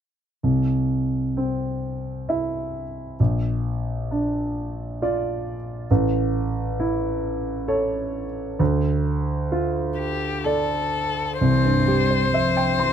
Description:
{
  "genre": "neoclassical piano and strings",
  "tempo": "66 BPM",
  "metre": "3/4",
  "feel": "rubato",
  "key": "unclear",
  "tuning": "A4 = 440 Hz",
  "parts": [
    { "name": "warm concert grand piano", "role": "accompaniment", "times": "0.4-12.9 s", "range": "A1 to C6", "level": "-22 LUFS", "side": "right 1 dB", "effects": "none" },
    { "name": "muted violin", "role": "melody", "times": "10.0-12.9 s", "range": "G4 to C5", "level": "-23 LUFS", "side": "left 6 dB", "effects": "none" },
    { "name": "muted cello", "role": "second line", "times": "11.4-12.9 s", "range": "E3 to G3", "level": "-28 LUFS", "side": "right 1 dB", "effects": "none" }
  ],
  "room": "little or no reverb",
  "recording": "close, detailed microphones",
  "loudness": "-21 LUFS",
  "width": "side -8 dB against mid",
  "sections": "0.4-11.4 A section; 11.4-12.9 B section",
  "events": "none",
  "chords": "0.4 C; 3.2 Bb; 5.9 A; 8.6 Dm; 11.4 C"
}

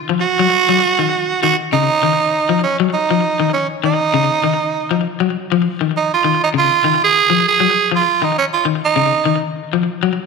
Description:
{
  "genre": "afrobeat",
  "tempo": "100 BPM",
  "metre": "4/4",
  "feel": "swing 55% on 16ths",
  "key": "unclear",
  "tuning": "A4 = 439 Hz",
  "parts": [
    { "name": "electric guitar at the edge of break-up", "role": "arpeggios", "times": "0.1-10.1 s", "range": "Db3 to Gb3", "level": "-18 LUFS", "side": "left 10 dB", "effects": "slapback echo" },
    { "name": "raspy tenor saxophone", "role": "melody", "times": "0.2-9.4 s", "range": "Db4 to Ab4", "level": "-15 LUFS", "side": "right 6 dB", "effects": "none" }
  ],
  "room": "wet echo chamber reverb, RT60 1.7 s",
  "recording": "1960s-style stereo with parts hard left and right",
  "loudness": "-13 LUFS",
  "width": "side -4 dB against mid",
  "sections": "0.0-10.2 A section",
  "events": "none",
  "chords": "0.0 Dbadd9"
}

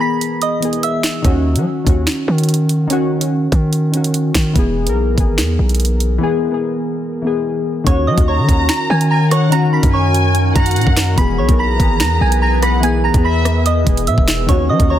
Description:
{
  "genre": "hip hop, drill",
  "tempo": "145 BPM",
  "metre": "4/4",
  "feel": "half-time",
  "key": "Eb phrygian",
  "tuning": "A4 = 436 Hz",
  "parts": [
    { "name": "soft synth bell", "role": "melody", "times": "0.0-1.2, 7.9-15.0 s", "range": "Db5 to B6", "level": "-20 LUFS", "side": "right 2 dB", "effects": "chorus" },
    { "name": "warbly lo-fi synth keys", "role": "accompaniment", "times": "0.0-15.0 s", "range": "Eb3 to Bb4", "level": "-19 LUFS", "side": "left 2 dB", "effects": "chorus" },
    { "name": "drill drum kit", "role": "drums", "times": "0.2-14.9 s", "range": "finger snaps, hi-hat, kick drum, rim click, snare drum", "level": "-16 LUFS", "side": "equal", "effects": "none" },
    { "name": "hard-hitting 808-style bass", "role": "bass", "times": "1.2-15.0 s", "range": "E1 to Gb3", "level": "-16 LUFS", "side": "equal", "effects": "none" },
    { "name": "warbly tape-like pad", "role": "sustained chords", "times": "8.4-15.0 s", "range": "Eb3 to B4", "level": "-24 LUFS", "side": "equal", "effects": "chorus, built-in reverb" },
    { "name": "warm studio violin section", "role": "second line", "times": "8.3-15.0 s", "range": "E5 to Bb5", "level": "-22 LUFS", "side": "left 2 dB", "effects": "digital delay" }
  ],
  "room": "digital ambience",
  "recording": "dense, heavily limited modern master",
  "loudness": "-13 LUFS",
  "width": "side -11 dB against mid",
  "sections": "0.0-7.9 A section; 7.9-15.0 B section",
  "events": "break 0.0-1.2, 6.2-7.9",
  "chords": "0.0 E; 1.2 Ebm7; 4.6 E; 7.9 Ebm7; 11.2 E; 14.5 Ebm7"
}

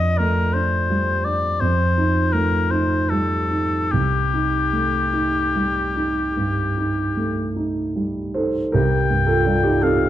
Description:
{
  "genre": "classical, impressionist duo for oboe and grand piano",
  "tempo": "48-57 BPM (dotted quarters)",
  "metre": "12/8",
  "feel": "rubato",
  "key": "C dorian",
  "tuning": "A4 = 442 Hz",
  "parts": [
    { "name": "clear oboe", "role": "melody", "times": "0.0-10.1 s", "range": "G4 to G5", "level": "-22 LUFS", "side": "left 5 dB", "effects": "none" },
    { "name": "dark concert grand piano", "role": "accompaniment", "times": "0.0-10.1 s", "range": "C2 to C5", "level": "-20 LUFS", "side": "right 1 dB", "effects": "none" }
  ],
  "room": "moderate recital hall reverb, RT60 1.3 s",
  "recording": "dark, warm production",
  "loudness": "-18 LUFS",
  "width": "side -12 dB against mid",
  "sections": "0.0-8.7 A section; 8.7-10.1 A section",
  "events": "none",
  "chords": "0.0 F69; 1.6 F9; 3.9 Cm6; 8.7 Cm7"
}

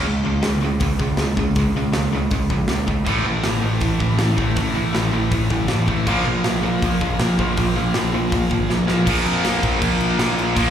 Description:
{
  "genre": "punk rock",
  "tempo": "160 BPM",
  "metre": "4/4",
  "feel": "straight",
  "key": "unclear",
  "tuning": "A4 = 443 Hz",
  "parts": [
    { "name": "distorted electric guitar", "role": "riff", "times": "0.0-10.7 s", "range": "A2 to Bb3", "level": "-24 LUFS", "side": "left 8 dB", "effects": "overdrive" },
    { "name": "distorted electric guitar", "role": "riff", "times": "0.0-10.7 s", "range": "A2 to Bb3", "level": "-23 LUFS", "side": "right 7 dB", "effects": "overdrive" },
    { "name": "growling picked electric bass", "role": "bass", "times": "0.0-10.7 s", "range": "Gb1 to F2", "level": "-23 LUFS", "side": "equal", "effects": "overdrive" },
    { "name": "big rock drum kit", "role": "drums", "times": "0.4-10.7 s", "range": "crash cymbal, hi-hat, kick drum, snare drum", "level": "-24 LUFS", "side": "equal", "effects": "none" },
    { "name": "sludgy distorted guitar", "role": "riff", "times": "3.0-9.1 s", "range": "A2 to Bb3", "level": "-25 LUFS", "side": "left 1 dB", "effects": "overdrive, slapback echo" }
  ],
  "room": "little or no reverb",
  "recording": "live gig heard through the venue's PA, club reverb",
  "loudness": "-17 LUFS",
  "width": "side -9 dB against mid",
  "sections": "0.0-9.1 A section; 9.1-10.7 B section",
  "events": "drum fill 8.7-9.1",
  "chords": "0.0 Db5; 3.1 A5; 6.1 Bb5"
}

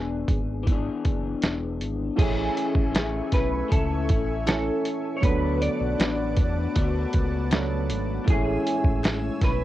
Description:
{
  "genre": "indie pop, bedroom pop",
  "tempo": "79 BPM",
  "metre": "4/4",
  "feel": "straight",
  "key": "A major",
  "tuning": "A4 = 440 Hz",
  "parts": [
    { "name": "electric guitar through a small old amp", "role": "melody", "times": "0.0-9.6 s", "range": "G#4 to D5", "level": "-31 LUFS", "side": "right 1 dB", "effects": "ensemble chorus, analog delay, plate reverb" },
    { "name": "electric guitar through a small old amp", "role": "accompaniment", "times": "0.0-9.6 s", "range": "A2 to G#4", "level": "-30 LUFS", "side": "left 6 dB", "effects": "analog chorus, vibrato effect, cassette tape" },
    { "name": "round analog bass", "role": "bass", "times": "0.0-9.6 s", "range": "E1 to E2", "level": "-29 LUFS", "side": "equal", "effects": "tube saturation" },
    { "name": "lo-fi sampler-style drum kit", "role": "drums", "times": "0.3-9.6 s", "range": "crash cymbal, hi-hat, kick drum, snare drum", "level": "-24 LUFS", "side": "equal", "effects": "cassette tape" },
    { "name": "warm upright piano", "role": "accompaniment", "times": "2.2-9.6 s", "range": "E3 to G#5", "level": "-31 LUFS", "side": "right 7 dB", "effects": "cassette tape" },
    { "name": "lush unison pad", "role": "sustained chords", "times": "2.2-9.6 s", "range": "A3 to E6", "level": "-38 LUFS", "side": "right 1 dB", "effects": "chorus, cassette tape" },
    { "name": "group handclap", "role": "percussion", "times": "3.0-9.2 s", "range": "none", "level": "-42 LUFS", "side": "left 9 dB", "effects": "none" }
  ],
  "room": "light reverb",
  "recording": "home recording on cassette",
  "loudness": "-22 LUFS",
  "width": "side -14 dB against mid",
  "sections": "0.0-2.2 A section; 2.2-9.6 B section",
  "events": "none",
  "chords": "0.0 E7; 2.2 Amaj7; 5.2 D6; 8.3 Amaj7"
}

